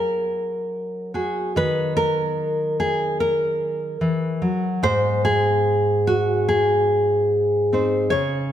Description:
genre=folk, solo fingerstyle acoustic guitar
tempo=73 BPM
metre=4/4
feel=rubato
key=unclear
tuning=A4 = 436 Hz
part: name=nylon-string guitar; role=solo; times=0.0-8.5 s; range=G#2 to C#5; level=-19 LUFS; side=equal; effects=none
room=moderate scoring stage reverb, RT60 1.7 s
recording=none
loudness=-19 LUFS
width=side -10 dB against mid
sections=0.0-8.5 A section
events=none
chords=0.0 F#add9; 1.6 D#m; 4.8 G#

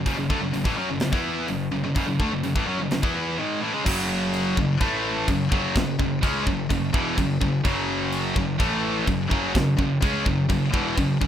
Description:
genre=heavy metal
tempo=126 BPM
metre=4/4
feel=straight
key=F# minor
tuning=A4 = 442 Hz
part: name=heavy high-gain guitar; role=riff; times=0.0-11.3 s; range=E2 to E4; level=-26 LUFS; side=left 7 dB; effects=distortion
part: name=high-gain distorted guitar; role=riff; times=0.0-11.3 s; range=E2 to E4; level=-26 LUFS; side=right 8 dB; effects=distortion
part: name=fuzz picked electric bass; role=bass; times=0.0-11.3 s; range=E1 to F#2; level=-34 LUFS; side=equal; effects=overdrive
part: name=tight metal drum kit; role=drums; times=0.1-11.3 s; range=crash cymbal, hi-hat, kick drum, snare drum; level=-26 LUFS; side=equal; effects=none
part: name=distorted electric guitar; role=riff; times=3.9-11.3 s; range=E2 to C#4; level=-34 LUFS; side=equal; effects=none
room=light reverb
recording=rough home demo mix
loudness=-21 LUFS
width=side -10 dB against mid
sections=0.0-3.9 A section; 3.9-11.3 B section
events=half time 3.9-11.3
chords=0.0 F#m; 3.9 F#5; 4.8 A5; 5.3 F#5; 8.6 A5; 9.1 F#5

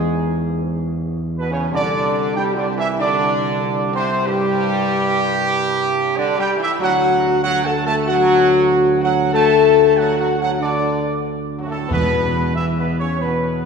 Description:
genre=classical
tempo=94 BPM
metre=4/4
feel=straight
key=unclear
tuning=A4 = 440 Hz
part: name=dark trumpet section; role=melody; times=0.0-13.7 s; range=F#4 to A5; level=-21 LUFS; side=right 2 dB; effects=none
part: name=bright trombone section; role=sustained chords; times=0.0-13.7 s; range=F#2 to A3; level=-23 LUFS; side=right 2 dB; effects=none
part: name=clear French horn section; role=sustained chords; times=0.0-13.7 s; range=F#3 to A4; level=-20 LUFS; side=left 5 dB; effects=none
part: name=mellow tuba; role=bass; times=0.0-13.7 s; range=C2 to E2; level=-23 LUFS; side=right 2 dB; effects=none
part: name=timpani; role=percussion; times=11.9-12.8 s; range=E2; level=-24 LUFS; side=equal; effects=none
room=wet scoring stage reverb, RT60 2.1 s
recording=heard from further back in the room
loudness=-15 LUFS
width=side -5 dB against mid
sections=0.0-13.7 A section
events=none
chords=0.0 E; 1.7 Csus2; 6.8 D; 11.9 E5

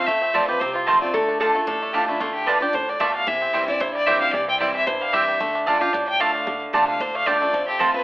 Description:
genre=bluegrass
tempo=225 BPM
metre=4/4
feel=swing 54% on 8ths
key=D minor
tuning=A4 = 440 Hz
part: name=bluegrass banjo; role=melody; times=0.0-8.0 s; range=D3 to G4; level=-26 LUFS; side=right 1 dB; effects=none
part: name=clear fiddle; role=melody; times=0.0-8.0 s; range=E4 to G5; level=-22 LUFS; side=left 1 dB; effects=none
part: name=picked steel-string acoustic guitar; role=accompaniment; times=0.0-8.0 s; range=F2 to F4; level=-29 LUFS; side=equal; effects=none
part: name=upright bass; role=bass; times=0.1-7.9 s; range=G1 to F2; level=-41 LUFS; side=equal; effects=none
part: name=mandolin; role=stabs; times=0.3-7.9 s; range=A3 to A5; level=-22 LUFS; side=right 2 dB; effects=none
part: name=lap resonator guitar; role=second line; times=1.1-1.6 s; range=A4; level=-24 LUFS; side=left 1 dB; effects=none
room=moderate large studio reverb, RT60 0.8 s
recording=telephone sound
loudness=-18 LUFS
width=side -18 dB against mid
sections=0.0-8.0 A section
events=none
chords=0.0 F; 1.1 Dm; 3.3 C; 5.4 Dm; 7.5 F

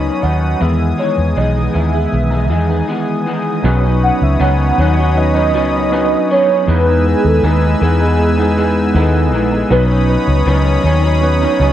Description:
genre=indie pop, bedroom pop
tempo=79 BPM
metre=4/4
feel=straight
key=E major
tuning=A4 = 440 Hz
part: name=warm velvety synth lead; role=melody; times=0.0-11.7 s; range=G#4 to F#5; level=-18 LUFS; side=right 2 dB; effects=lush chorus, tape echo
part: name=electric guitar through a small old amp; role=accompaniment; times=0.0-11.7 s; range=B2 to D#4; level=-19 LUFS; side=left 3 dB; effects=analog chorus, warbly pitch drift
part: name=tine electric piano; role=accompaniment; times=0.0-11.7 s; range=D#3 to B4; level=-20 LUFS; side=right 3 dB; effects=medium stereo tremolo, cassette tape
part: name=warm analog pad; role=sustained chords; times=0.0-11.7 s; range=G#4 to E6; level=-22 LUFS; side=left 1 dB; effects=chorus
part: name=vintage muted fingered electric bass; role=bass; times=0.0-11.7 s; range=A#1 to E2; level=-14 LUFS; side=equal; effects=none
room=light reverb, digital ambience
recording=none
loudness=-11 LUFS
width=side -11 dB against mid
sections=0.0-3.6 A section; 3.6-11.7 B section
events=break 2.9-3.6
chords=0.0 Badd9; 0.6 Emaj7; 3.6 Badd9; 6.7 Emaj7; 9.7 Badd9

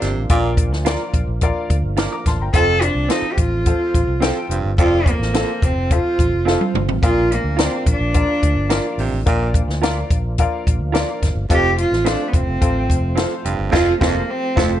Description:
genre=uptempo 1960s-style soul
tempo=107 BPM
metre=4/4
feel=straight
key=Bb major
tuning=A4 = 437 Hz
part: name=rich cello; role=melody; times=0.0-14.8 s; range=A3 to A4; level=-20 LUFS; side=right 1 dB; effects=none
part: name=clear upright piano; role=accompaniment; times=0.0-14.8 s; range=Bb2 to F6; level=-25 LUFS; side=left 5 dB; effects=none
part: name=percussive tonewheel organ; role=sustained chords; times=0.0-14.8 s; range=F3 to A4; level=-30 LUFS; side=right 1 dB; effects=overdrive, chorus vibrato, slow rotary speaker
part: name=growling baritone saxophone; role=riff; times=0.0-14.7 s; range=F2 to C3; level=-24 LUFS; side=right 6 dB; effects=none
part: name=fingered electric bass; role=bass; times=0.0-14.8 s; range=F1 to D2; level=-22 LUFS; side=equal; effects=none
part: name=compact cocktail drum kit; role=drums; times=0.0-14.7 s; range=crash cymbal, hi-hat, kick drum, snare drum, toms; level=-19 LUFS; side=equal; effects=none
part: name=electric guitar through a small old amp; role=stabs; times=0.9-14.8 s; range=C4 to D5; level=-25 LUFS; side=right 8 dB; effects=none
room=studio reverb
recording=nothing above 10.5 kHz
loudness=-16 LUFS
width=side -12 dB against mid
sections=0.0-14.8 A section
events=drum fill 6.5-7.0; band accent 13.7-14.8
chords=0.0 Bb; 2.5 F; 7.0 Bb; 11.5 F

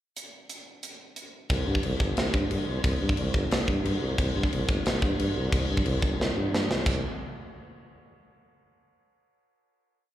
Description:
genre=heavy metal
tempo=179 BPM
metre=4/4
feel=straight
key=unclear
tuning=A4 = 441 Hz
part: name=tight metal drum kit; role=drums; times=0.2-6.9 s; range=crash cymbal, hi-hat, kick drum, snare drum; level=-28 LUFS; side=equal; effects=none
part: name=mellow tuba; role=bass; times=1.5-7.0 s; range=G1 to G2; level=-28 LUFS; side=equal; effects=none
room=little or no reverb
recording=live gig heard through the venue's PA, club reverb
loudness=-24 LUFS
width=side -13 dB against mid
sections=0.2-1.5 pickup bar; 1.5-6.9 riff; 6.9-8.2 final note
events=drum fill 6.2-6.9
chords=none

